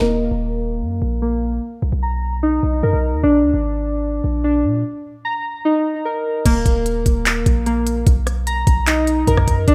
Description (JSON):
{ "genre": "hip hop, trap", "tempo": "149 BPM", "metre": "4/4", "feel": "half-time", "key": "Eb harmonic minor", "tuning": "A4 = 440 Hz", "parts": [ { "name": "warbly lo-fi synth keys", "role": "arpeggios", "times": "0.0-9.7 s", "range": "Bb3 to A#5", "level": "-21 LUFS", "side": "equal", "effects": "chorus, low-pass filter, digital delay" }, { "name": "warm 808-style bass", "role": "bass", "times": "0.0-9.7 s", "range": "Eb1 to Bb2", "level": "-23 LUFS", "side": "equal", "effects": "none" }, { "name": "trap drum kit", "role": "drums", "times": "6.5-9.7 s", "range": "crash cymbal, handclaps, hi-hat, kick drum, rim click", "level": "-19 LUFS", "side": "equal", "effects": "none" } ], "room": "light reverb", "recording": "none", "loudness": "-19 LUFS", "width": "mono", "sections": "0.0-6.5 A section; 6.5-9.7 B section", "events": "filter sweep on synth keys 0.0-6.5; break 4.8-6.5", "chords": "0.0 Eb5; 1.6 Bmaj7; 3.2 Bb7; 4.8 Eb5; 8.1 Bmaj7" }